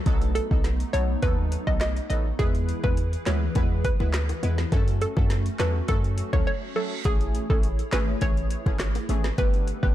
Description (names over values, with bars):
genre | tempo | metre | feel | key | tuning
dancehall | 103 BPM | 4/4 | straight | A major | A4 = 440 Hz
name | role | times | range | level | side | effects
hollow soft pad | sustained chords | 0.0-9.9 s | E3 to C#5 | -35 LUFS | equal | ensemble chorus, sidechain pumping
synth brass stab | accompaniment | 0.1-9.9 s | D3 to B4 | -33 LUFS | right 1 dB | chorus, phaser
hard-hitting 808-style bass | bass | 0.1-9.9 s | G1 to F#2 | -26 LUFS | equal | none
afro-pop drum kit | drums | 0.1-9.9 s | handclaps, hi-hat, kick drum, rim click, snare drum | -26 LUFS | equal | overdrive
hollow square pluck | melody | 0.4-9.9 s | G#4 to D#5 | -31 LUFS | right 1 dB | chorus, tape echo
bongos | percussion | 2.4-9.5 s | none | -40 LUFS | left 8 dB | none
reverse cymbal | sound effects | 6.4-7.1 s | none | -40 LUFS | right 7 dB | none
room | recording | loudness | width
little or no reverb | dark, warm production | -22 LUFS | side -13 dB against mid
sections
0.0-7.1 A section; 7.1-9.9 B section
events
reverse cymbal 6.4-7.1; break 6.5-7.1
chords
0.1 B7; 2.4 E; 4.7 F#m; 7.1 Amaj7; 9.4 Gadd9